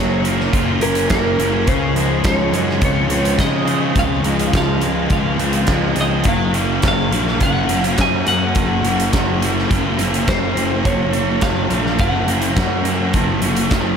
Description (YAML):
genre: rock, shoegaze and dream pop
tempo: 105 BPM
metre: 4/4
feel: straight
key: unclear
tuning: A4 = 440 Hz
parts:
  - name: twelve-string electric guitar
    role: melody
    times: 0.0-14.0 s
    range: Bb4 to Ab5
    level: -23 LUFS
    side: equal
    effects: harmonic tremolo, tape echo
  - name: crunchy overdriven guitar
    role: riff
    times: 0.0-14.0 s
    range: Db3 to F4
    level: -22 LUFS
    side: right 11 dB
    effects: reverse reverb
  - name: thick fuzz guitar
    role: riff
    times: 0.0-14.0 s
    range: Db3 to Db4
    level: -22 LUFS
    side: left 13 dB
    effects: distortion, analog chorus
  - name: fuzz picked electric bass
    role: bass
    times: 0.0-14.0 s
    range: Gb1 to Db3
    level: -21 LUFS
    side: equal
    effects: overdrive
  - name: big rock drum kit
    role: drums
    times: 0.2-13.8 s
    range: hi-hat, kick drum, snare drum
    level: -21 LUFS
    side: equal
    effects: none
room: light reverb, studio reverb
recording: none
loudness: -15 LUFS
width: side -7 dB against mid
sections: 0.0-14.0 A section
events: none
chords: 0.0 Gbmaj7; 1.7 Dbmaj7; 6.3 Gbmaj7